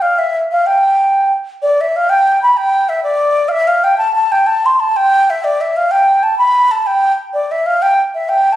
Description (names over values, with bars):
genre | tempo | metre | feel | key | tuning
celtic folk | 126 BPM (dotted quarters) | 6/8 | straight | G mixolydian | A4 = 440 Hz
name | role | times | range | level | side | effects
baroque flute | solo | 0.0-8.6 s | D5 to C6 | -11 LUFS | equal | none
room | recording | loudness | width
moderate recital hall reverb, RT60 1.3 s | recorded on a phone in the room, studio reverb, compression | -11 LUFS | side -13 dB against mid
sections
0.0-1.6 A section; 1.6-8.6 B section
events
none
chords
none